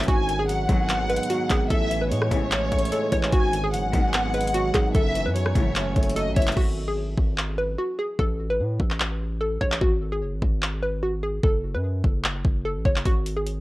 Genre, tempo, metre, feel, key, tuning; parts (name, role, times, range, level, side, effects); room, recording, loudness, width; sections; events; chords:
hip hop, trap; 148 BPM; 4/4; half-time; G# phrygian; A4 = 440 Hz
hollow square pluck; melody; 0.0-13.6 s; F#4 to C#5; -28 LUFS; equal; chorus, cassette tape
warm studio violin section; second line; 0.0-6.6 s; C#5 to G#5; -28 LUFS; left 1 dB; tape echo
overdriven tine electric piano; accompaniment; 0.0-6.6 s; F#2 to C#4; -30 LUFS; right 3 dB
deep dark ambient pad; sustained chords; 0.0-6.6 s; E3 to G#5; -36 LUFS; left 1 dB; chorus, built-in reverb
distorted 808-style bass; bass; 0.0-13.6 s; F#1 to A2; -28 LUFS; equal; distortion
trap drum kit; drums; 0.0-13.6 s; crash cymbal, handclaps, hi-hat, kick drum, rim click; -24 LUFS; equal; cassette tape
warm symphonic string section; stabs; 0.7-5.7 s; G#2 to F#3; -32 LUFS; left 3 dB; tape echo
little or no reverb; home recording on cassette; -21 LUFS; side -18 dB against mid
0.0-6.6 A section; 6.6-13.6 B section
break 6.6-13.1
0.1 G#m7; 1.7 Amaj7; 3.3 G#m7; 4.9 F#m7; 6.6 G#7(no3); 8.2 Asus2; 9.8 F#sus2; 11.4 F#m; 13.1 G#7(no3)